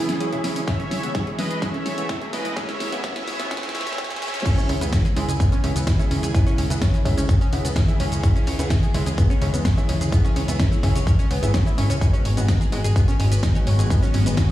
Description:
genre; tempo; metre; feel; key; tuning
progressive house; 127 BPM; 4/4; straight; C# minor; A4 = 440 Hz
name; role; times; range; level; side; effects
soft supersaw; melody; 0.0-4.4 s; E4 to E5; -31 LUFS; equal; sidechain pumping, dub echo
evolving wavetable pad; sustained chords; 0.0-14.5 s; C#3 to G#4; -32 LUFS; left 1 dB; phaser, built-in reverb, sidechain pumping
dark concert grand piano; stabs; 0.0-14.4 s; G#2 to E5; -32 LUFS; right 3 dB; sidechain pumping, low-pass filter, tape echo
riser; sound effects; 0.1-4.5 s; none; -34 LUFS; right 1 dB; none
analog pluck; arpeggios; 0.1-14.5 s; C#3 to C#6; -30 LUFS; equal; chorus, phaser, sidechain pumping, tape echo
pop drum kit; drums; 0.1-14.5 s; crash cymbal, hi-hat, shaker, snare drum; -29 LUFS; equal; sidechain pumping on hats, sidechain pumping on perc, sidechain pumping on cymbals
electronic kick drum; drums; 0.7-14.5 s; none; -19 LUFS; equal; none
plucky analog bass; bass; 4.7-14.4 s; G#1 to C#2; -21 LUFS; equal; sidechain pumping
room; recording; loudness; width
light reverb, digital ambience; played on a big sound system in a bare room, large studio reverb, high-pass filter, small room ambience; -19 LUFS; side -14 dB against mid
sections
0.0-4.5 A section; 4.5-14.5 B section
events
build-up 0.0-4.5; drum fill 0.0-4.5; filter sweep on ambient pad 0.0-4.5; filter sweep 0.0-4.5; riser 0.1-4.5; drop 4.5-14.5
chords
0.0 C#m; 12.0 G#m7

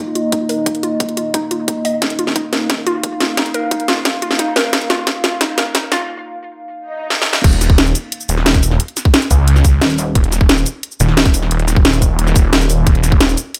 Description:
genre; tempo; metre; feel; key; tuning
dark technical drum and bass; 177 BPM; 4/4; straight; unclear; A4 = 441 Hz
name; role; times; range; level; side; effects
dark analog pad; sustained chords; 0.0-7.4 s; Bb3 to F5; -24 LUFS; equal; chorus, phaser, sidechain pumping
warbly dusty pluck; arpeggios; 0.2-6.0 s; Eb4 to Eb5; -24 LUFS; equal; chorus, sidechain pumping, tape echo
drum and bass drum kit; drums; 0.2-13.6 s; cabasa, crash cymbal, hi-hat, snare drum; -18 LUFS; equal; overdrive, studio reverb
electronic kick drum; drums; 0.3-13.2 s; none; -16 LUFS; equal; overdrive, high-pass filter on kick, studio reverb
swell; sound effects; 6.9-7.4 s; none; -30 LUFS; equal; none
snarling distorted saw bass; bass; 7.4-13.4 s; Eb1 to Db2; -16 LUFS; equal; sidechain pumping
pulsing pluck wobble bass; bass; 9.8-10.1 s; Eb1; -20 LUFS; equal; chorus, tube saturation
room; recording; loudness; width
light reverb, digital ambience; high-pass filter; -15 LUFS; mono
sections
0.0-7.4 A section; 7.4-13.6 B section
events
build-up 0.0-7.4; filter sweep on synth arpeggio sound 0.0-7.4; filter sweep 0.0-7.4; drum fill 2.0-6.1, 7.1-7.4; break 6.1-7.4; swell 6.9-7.4; drop 7.4-13.6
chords
0.0 Eb5

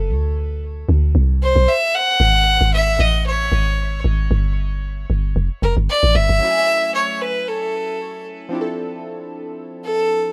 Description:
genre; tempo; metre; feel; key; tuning
amapiano; 114 BPM; 4/4; swing 55% on 16ths; unclear; A4 = 440 Hz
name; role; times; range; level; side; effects
deep log drum bass; bass; 0.0-6.4 s; E#1 to D2; -19 LUFS; equal; none
bright fiddle; melody; 1.4-10.3 s; A4 to F#5; -21 LUFS; equal; tape echo
warm analog keys; accompaniment; 6.4-10.3 s; F3 to G#5; -31 LUFS; equal; chorus, phaser
room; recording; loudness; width
little or no reverb; rough home demo mix; -18 LUFS; mono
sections
0.0-6.4 A section; 6.4-10.3 B section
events
drop 0.0-6.4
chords
0.1 N.C.; 1.9 F#madd9/G#; 4.3 N.C.; 6.4 F#m9; 8.5 Dm9

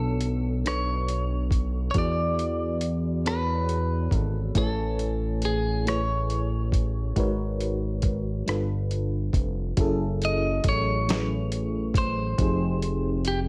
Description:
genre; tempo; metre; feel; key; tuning
slow six-eight R&B; 46 BPM (dotted quarters); 6/8; straight; unclear; A4 = 444 Hz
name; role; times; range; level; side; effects
clean electric guitar; melody; 0.0-13.4 s; G4 to D#5; -33 LUFS; equal; spring reverb, plate reverb
FM electric piano with tremolo; accompaniment; 0.0-13.5 s; B2 to G#5; -33 LUFS; equal; plate reverb
fat analog bass; bass; 0.0-13.5 s; F1 to E2; -30 LUFS; equal; none
dusty soul sampler-style drum kit; drums; 0.2-13.5 s; hi-hat, kick drum, rim click, snare drum; -29 LUFS; equal; none
room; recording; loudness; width
light reverb; none; -26 LUFS; mono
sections
0.0-9.8 A section; 9.8-13.5 B section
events
none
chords
0.0 Bm9; 1.9 E7; 4.6 Amaj9; 7.2 G#m11; 8.5 G9; 9.8 F#m7; 12.4 Fm9

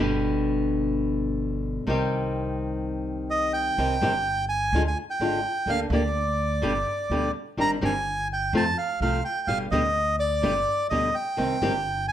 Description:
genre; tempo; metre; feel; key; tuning
tango; 126 BPM; 4/4; rubato; C minor; A4 = 441 Hz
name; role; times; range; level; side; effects
flamenco guitar; accompaniment; 0.0-11.7 s; B2 to G4; -26 LUFS; left 1 dB; none
upright bass; bass; 0.0-12.1 s; G1 to F2; -30 LUFS; right 1 dB; none
bandoneon; melody; 3.3-12.1 s; D5 to Bb5; -25 LUFS; right 1 dB; none
room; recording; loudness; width
light reverb; none; -23 LUFS; side -11 dB against mid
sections
0.0-3.8 A section; 3.8-12.1 B section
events
none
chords
0.0 G; 1.9 Cm; 4.7 Ddim; 5.7 Bb6/D; 6.6 G; 7.6 Cmadd9/G; 8.5 F; 9.5 G; 11.4 Cm

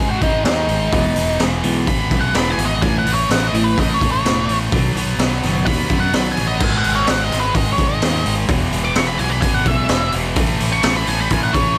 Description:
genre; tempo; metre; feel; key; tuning
quiet-loud alternative rock; 127 BPM; 4/4; straight; unclear; A4 = 445 Hz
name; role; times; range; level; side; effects
octave-fuzz lead guitar; melody; 0.0-11.8 s; D#4 to D6; -23 LUFS; equal; distortion
clean electric guitar; arpeggios; 0.0-6.6 s; G#2 to B3; -26 LUFS; equal; phaser
distorted electric guitar; riff; 0.0-11.8 s; E2 to B3; -28 LUFS; equal; distortion
scooped high-gain guitar; riff; 0.0-11.8 s; E2 to B3; -27 LUFS; equal; distortion
growling fingered electric bass; bass; 0.0-11.8 s; E1 to F#2; -25 LUFS; equal; overdrive
raw garage drum kit; drums; 0.2-11.7 s; crash cymbal, hi-hat, kick drum, snare drum; -22 LUFS; equal; none
room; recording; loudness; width
small room ambience; none; -17 LUFS; mono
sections
0.0-11.8 A section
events
lead electric guitar solo 0.0-11.8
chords
0.0 G#5; 0.9 E; 2.8 A; 4.7 B; 6.6 G#5; 8.5 E5; 10.4 A

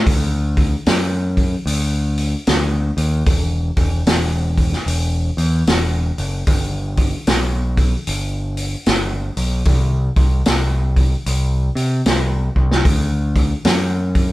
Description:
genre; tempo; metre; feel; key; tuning
blues rock power trio and southern rock; 75 BPM; 4/4; swing 63% on 8ths; D mixolydian; A4 = 435 Hz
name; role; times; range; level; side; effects
growling picked electric bass; bass; 0.0-14.3 s; E1 to C3; -18 LUFS; equal; overdrive
vintage drum kit; drums; 0.1-14.3 s; hi-hat, kick drum, snare drum; -18 LUFS; equal; none
room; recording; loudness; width
light reverb; band playing live in one room; -15 LUFS; side -17 dB against mid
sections
0.1-14.3 A section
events
drum fill 12.5-12.9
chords
none

